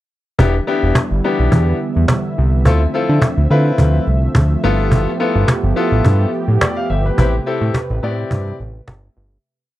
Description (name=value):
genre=early-eighties boogie funk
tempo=106 BPM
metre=4/4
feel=straight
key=unclear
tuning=A4 = 440 Hz
part: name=bright concert grand piano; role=accompaniment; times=0.4-8.6 s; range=B3 to F5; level=-19 LUFS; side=left 4 dB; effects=none
part: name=warm analog pad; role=sustained chords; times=0.5-9.4 s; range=C3 to E5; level=-22 LUFS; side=right 2 dB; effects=chorus
part: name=fat analog bass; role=bass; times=0.4-9.4 s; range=E1 to D3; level=-15 LUFS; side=equal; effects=none
part: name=cajon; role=drums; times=0.4-9.4 s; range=none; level=-16 LUFS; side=equal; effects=none
room=small room ambience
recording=dry, close 1970s-style studio recording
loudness=-13 LUFS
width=side -15 dB against mid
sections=0.4-9.4 verse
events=fade-out 7.2-9.4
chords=0.4 Em7; 2.7 Dm9; 4.6 G13; 7.2 Am9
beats=| 0.39 0.95 1.52 2.09 | 2.65 3.22 3.78 4.35 | 4.92 5.48 6.05 6.61 | 7.18 7.75 8.31 8.88